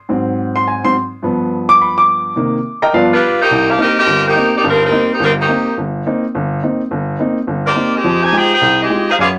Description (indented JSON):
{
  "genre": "jazz",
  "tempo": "212 BPM",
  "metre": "4/4",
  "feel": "swing 59% on 8ths",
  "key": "C minor from 3.5 s",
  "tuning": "A4 = 439 Hz",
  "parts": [
    { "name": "warm baby grand piano", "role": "accompaniment", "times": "0.1-9.4 s", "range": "G1 to D6", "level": "-17 LUFS", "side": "equal", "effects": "none" },
    { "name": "warm saxophone section", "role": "melody", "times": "3.1-9.3 s", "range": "G3 to Ab5", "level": "-15 LUFS", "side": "equal", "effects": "none" }
  ],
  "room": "wet studio ambience, RT60 0.5 s",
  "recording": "none",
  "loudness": "-14 LUFS",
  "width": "mono",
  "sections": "0.0-3.5 A section; 3.5-9.4 B section",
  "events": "grand piano solo 0.0-3.5",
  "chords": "0.0 Ab7; 1.2 G7; 2.4 Cm7; 2.9 G7; 3.5 Cm7; 8.0 Fm9"
}